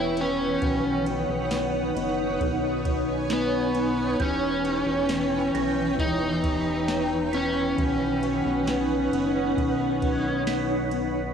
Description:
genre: dream pop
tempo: 67 BPM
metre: 4/4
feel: straight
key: B major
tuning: A4 = 440 Hz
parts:
  - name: overdriven slide guitar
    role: melody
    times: 0.0-10.4 s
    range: B3 to E4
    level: -26 LUFS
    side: equal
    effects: analog delay
  - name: granular cloud pad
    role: sustained chords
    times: 0.0-11.3 s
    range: E3 to G#5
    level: -27 LUFS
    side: right 2 dB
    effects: built-in reverb, cassette tape
  - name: clean electric guitar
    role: arpeggios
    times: 0.0-11.3 s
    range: D#3 to G4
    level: -32 LUFS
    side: left 10 dB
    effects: analog chorus, cassette tape, analog delay
  - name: chorused synth bass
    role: bass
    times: 0.0-11.3 s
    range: E1 to B1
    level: -34 LUFS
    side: right 1 dB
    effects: none
  - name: soft vintage rhythm box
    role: drums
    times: 0.2-11.1 s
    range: kick drum, ride cymbal, snare drum, tambourine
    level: -32 LUFS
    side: right 1 dB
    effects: cassette tape
  - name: synth chime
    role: texture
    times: 4.2-11.3 s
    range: G6 to B6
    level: -40 LUFS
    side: right 9 dB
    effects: ensemble chorus, tremolo, cassette tape, analog delay
room: moderate spring reverb, RT60 2.9 s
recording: home recording on cassette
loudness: -23 LUFS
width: side -7 dB against mid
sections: 0.0-11.3 A section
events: none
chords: 0.0 Em6; 0.6 Badd9; 4.2 Em6; 7.8 Badd9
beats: | 0.62 1.51 2.41 3.30 | 4.20 5.09 5.99 6.88 | 7.78 8.68 9.57 10.47

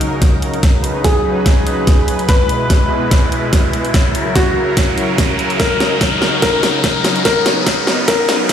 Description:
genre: heavy wobble dubstep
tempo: 145 BPM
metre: 4/4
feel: swing 54% on 16ths, half-time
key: unclear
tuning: A4 = 440 Hz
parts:
  - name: supersaw pad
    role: sustained chords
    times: 0.0-8.5 s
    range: B2 to B4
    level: -19 LUFS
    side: equal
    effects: sidechain pumping
  - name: dubstep drum kit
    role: drums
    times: 0.0-8.5 s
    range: hi-hat, snare drum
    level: -19 LUFS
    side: equal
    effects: high-pass filter on hats, high-pass filter on toms, high-pass filter on snare
  - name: riser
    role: sound effects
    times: 1.1-8.5 s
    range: none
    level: -22 LUFS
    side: left 1 dB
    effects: none
  - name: electronic kick drum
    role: drums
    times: 0.2-8.5 s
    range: none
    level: -14 LUFS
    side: equal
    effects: none
  - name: felt-muted upright piano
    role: melody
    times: 1.0-8.5 s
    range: Gb4 to B4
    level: -18 LUFS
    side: left 1 dB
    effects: ping-pong delay
room: moderate lush hall reverb, RT60 2.0 s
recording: played on a big sound system in a bare room, stone room reverb, high-pass filter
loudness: -12 LUFS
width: side -9 dB against mid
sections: 0.0-8.5 A section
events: build-up 0.0-8.5; drum fill 0.0-8.5; filter sweep 0.0-8.5; riser 1.1-8.5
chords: 0.0 Ebm7; 0.6 Badd9; 2.3 E; 3.9 Gb7; 5.6 Ebm7; 7.3 Badd9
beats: 0.22 | 0.63 1.04 1.46 1.87 | 2.29 2.70 3.11 3.53 | 3.94 4.36 4.77 5.18 | 5.60 6.01 6.42 6.84 | 7.25 7.67 8.08 8.49

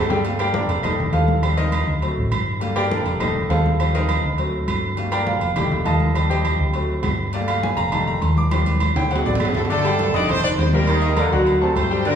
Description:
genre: latin, salsa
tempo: 203 BPM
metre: 4/4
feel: straight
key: G minor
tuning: A4 = 441 Hz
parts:
  - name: clear horn section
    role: melody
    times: 0.0-0.1, 9.4-12.2 s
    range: F#3 to D5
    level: -25 LUFS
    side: right 1 dB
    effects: none
  - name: mellow trombone section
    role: second line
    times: 0.0, 9.7-12.2 s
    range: C3 to Eb3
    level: -27 LUFS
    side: right 2 dB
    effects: none
  - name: bright grand piano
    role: accompaniment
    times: 0.0-12.2 s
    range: D3 to Eb6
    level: -22 LUFS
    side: left 1 dB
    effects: none
  - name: hollow-body short-scale fingered electric bass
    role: bass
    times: 0.0-12.2 s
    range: F1 to Eb2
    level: -22 LUFS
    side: equal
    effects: none
  - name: congas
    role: percussion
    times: 0.1-12.2 s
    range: none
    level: -28 LUFS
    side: left 1 dB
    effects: none
  - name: timbales and agogo bells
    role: percussion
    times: 0.1-12.2 s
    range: none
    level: -26 LUFS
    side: right 5 dB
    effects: none
  - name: claves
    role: percussion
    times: 0.4-9.5 s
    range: none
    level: -35 LUFS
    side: right 2 dB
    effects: none
room: wet recital hall reverb, RT60 1.8 s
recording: recorded in a church or concert hall, studio reverb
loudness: -18 LUFS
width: side -8 dB against mid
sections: 0.2-9.7 A section; 9.7-12.2 B section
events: drum fill 0.0, 8.5-9.7; grand piano solo 0.2-9.7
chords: 0.2 Gmadd9; 0.8 F7; 1.4 Eb6; 2.0 D7; 2.6 Gmadd9; 3.2 F7; 3.8 Eb6; 4.4 D7; 5.0 Gmadd9; 5.6 F7; 6.2 Eb6; 6.7 D7; 7.3 Gmadd9; 7.9 F7; 8.5 Eb6; 9.1 D7; 9.7 Gsus2; 10.3 F5; 10.9 Eb; 11.5 D7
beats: | 0.25 0.55 0.84 1.14 | 1.43 1.73 2.02 2.32 | 2.61 2.91 3.20 3.50 | 3.79 4.09 4.38 4.68 | 4.97 5.27 5.56 5.86 | 6.15 6.45 6.74 7.04 | 7.33 7.63 7.92 8.22 | 8.51 8.81 9.10 9.40 | 9.69 9.99 10.28 10.58 | 10.87 11.17 11.46 11.76 | 12.05

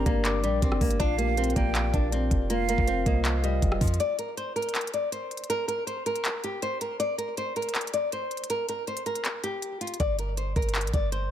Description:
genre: hip hop, trap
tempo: 160 BPM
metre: 4/4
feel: half-time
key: G minor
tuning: A4 = 440 Hz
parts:
  - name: flamenco guitar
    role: melody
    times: 0.0-11.3 s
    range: F3 to D5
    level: -29 LUFS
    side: left 2 dB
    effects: low-pass filter, digital delay
  - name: hollow concert flute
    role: second line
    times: 0.0-3.2 s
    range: F5 to Bb5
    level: -33 LUFS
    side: right 8 dB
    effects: digital delay
  - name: mellow tine electric piano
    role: accompaniment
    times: 0.0-4.0 s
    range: D4 to D6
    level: -31 LUFS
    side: left 2 dB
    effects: medium stereo tremolo, low-pass filter
  - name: clean 808-style bass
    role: bass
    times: 0.0-4.0, 10.0-11.3 s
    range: F1 to F2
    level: -28 LUFS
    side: equal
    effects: none
  - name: trap drum kit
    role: drums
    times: 0.1-11.2 s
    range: handclaps, hi-hat, kick drum, rim click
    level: -29 LUFS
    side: equal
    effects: none
room: light reverb, digital ambience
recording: none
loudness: -25 LUFS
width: side -10 dB against mid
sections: 0.0-4.0 A section; 4.0-11.3 B section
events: break 4.0-10.0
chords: 0.0 Gm; 1.0 Bb6; 2.5 F7sus4; 4.0 N.C.; 10.0 Gm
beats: 0.25 0.62 | 1.00 1.37 1.75 2.12 | 2.50 2.87 3.25 3.62 | 4.00 4.37 4.75 5.12 | 5.50 5.87 6.25 6.62 | 7.00 7.37 7.75 8.12 | 8.50 8.87 9.25 9.62 | 10.00 10.37 10.75 11.12

